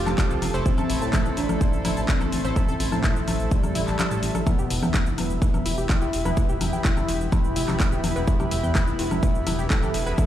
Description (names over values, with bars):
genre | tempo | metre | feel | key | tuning
melodic techno | 126 BPM | 4/4 | straight | E minor | A4 = 439 Hz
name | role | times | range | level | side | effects
expressive synth lead | melody | 0.0-10.3 s | G3 to A4 | -31 LUFS | equal | lush chorus, sidechain pumping, tape echo
dark detuned synth bell | second line | 0.0-10.3 s | C4 to A4 | -37 LUFS | left 3 dB | none
lush unison pad | sustained chords | 0.0-10.3 s | G4 to D6 | -36 LUFS | left 1 dB | chorus, sidechain pumping
sync-sweep polysynth | stabs | 0.0-10.3 s | E3 to A4 | -34 LUFS | right 4 dB | chorus, sidechain pumping, tape echo
warbly tape-like pad | texture | 0.0-10.3 s | E4 to A5 | -36 LUFS | left 1 dB | chorus, built-in reverb, sidechain pumping
tight sequenced synth | arpeggios | 0.1-10.2 s | E4 to E6 | -34 LUFS | equal | chorus, sidechain pumping, tape echo
dark detuned saw bass | bass | 0.1-10.1 s | D1 to A2 | -28 LUFS | equal | tube saturation, sidechain pumping
house drum kit | drums | 0.1-10.3 s | congas, handclaps, hi-hat, shaker, woodblock | -28 LUFS | left 2 dB | none
electronic kick drum | drums | 0.2-10.3 s | none | -22 LUFS | equal | none
room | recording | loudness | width
little or no reverb | played on a big sound system in a bare room, large studio reverb | -21 LUFS | side -11 dB against mid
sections
0.0-10.3 A section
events
kick drops out 4.0-4.5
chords
0.0 F; 0.7 Am; 4.5 Em